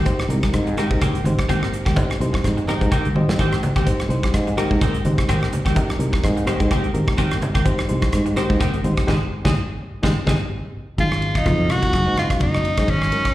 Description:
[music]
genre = electric jazz fusion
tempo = 126 BPM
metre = 4/4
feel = swing 55% on 16ths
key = Ab major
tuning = A4 = 436 Hz
[part]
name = clean electric guitar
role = stabs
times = 0.0-10.4 s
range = Eb3 to G4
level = -27 LUFS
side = equal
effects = wide subtle chorus, slapback echo
[part]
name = sustaining fretless electric bass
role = bass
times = 0.0-13.3 s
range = Gb1 to Ab2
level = -22 LUFS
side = equal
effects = none
[part]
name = reed electric piano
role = accompaniment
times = 0.1-13.3 s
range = Gb3 to Bb5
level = -26 LUFS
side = left 1 dB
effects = overdrive, slapback echo
[part]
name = modern studio drum kit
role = drums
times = 0.1-13.3 s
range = hi-hat, kick drum, ride cymbal, rim click, snare drum, toms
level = -22 LUFS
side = equal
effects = none
[part]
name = congas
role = percussion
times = 0.5-12.9 s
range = none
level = -27 LUFS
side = equal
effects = none
[part]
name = edgy tenor saxophone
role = melody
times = 11.0-13.3 s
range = Db4 to Gb4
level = -21 LUFS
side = equal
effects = slapback echo
[sound]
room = little or no reverb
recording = live gig heard through the venue's PA, recital hall reverb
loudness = -17 LUFS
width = side -15 dB against mid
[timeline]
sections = 0.0-11.0 A section; 11.0-13.3 B section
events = reed electric piano fill 2.4-3.4; drum fill 2.9-3.4, 10.4-11.0; band accent 9.1-11.0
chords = 0.0 Abmaj9; 11.0 Ab7sus4

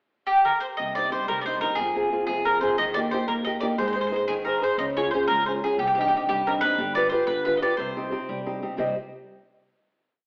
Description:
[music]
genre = italian folk, Italian serenade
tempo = 120 BPM (dotted quarters)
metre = 6/8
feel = straight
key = C minor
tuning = A4 = 439 Hz
[part]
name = mandolin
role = melody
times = 0.3-8.4 s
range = G4 to Eb5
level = -27 LUFS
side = equal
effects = none
[part]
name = nylon-string guitar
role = accompaniment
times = 0.8-9.0 s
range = C3 to Eb5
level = -28 LUFS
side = equal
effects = none
[part]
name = upright bass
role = bass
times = 0.8-8.9 s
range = G1 to F2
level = -44 LUFS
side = equal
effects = none
[sound]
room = wet stone room reverb, RT60 1.2 s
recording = band playing live in one room, AM radio sound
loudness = -25 LUFS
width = mono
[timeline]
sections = 0.0-0.8 pickup bar; 0.8-8.8 A section; 8.8-9.8 final chord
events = none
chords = 0.0 N.C.; 0.8 Cm; 1.8 Fm; 2.8 Eb; 3.8 Ab; 4.8 Db; 5.8 Cmadd9; 6.8 G7; 7.8 Cm

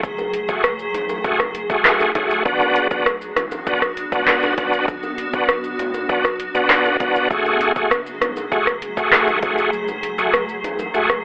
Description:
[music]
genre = dancehall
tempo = 99 BPM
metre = 4/4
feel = straight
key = F# minor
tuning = A4 = 439 Hz
[part]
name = granular cloud pad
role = sustained chords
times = 0.0-11.2 s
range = F#3 to G#4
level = -26 LUFS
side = equal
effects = built-in reverb, sidechain pumping
[part]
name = punchy sub bass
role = bass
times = 0.0-11.2 s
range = E1 to D2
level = -42 LUFS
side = equal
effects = none
[part]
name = afro-pop drum kit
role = drums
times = 0.0-11.2 s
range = handclaps, hi-hat, kick drum, rim click, shaker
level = -18 LUFS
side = equal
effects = overdrive
[part]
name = bongos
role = percussion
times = 0.2-10.9 s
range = none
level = -31 LUFS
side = equal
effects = none
[part]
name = bright tonewheel organ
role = accompaniment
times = 0.5-11.1 s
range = A3 to G#4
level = -18 LUFS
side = equal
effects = overdrive, chorus vibrato, fast rotary speaker
[sound]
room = light reverb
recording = telephone sound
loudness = -16 LUFS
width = side -38 dB against mid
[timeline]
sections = 0.0-11.2 A section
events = break 9.7-11.2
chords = 0.0 F#madd9; 2.5 Bm; 7.3 F#madd9

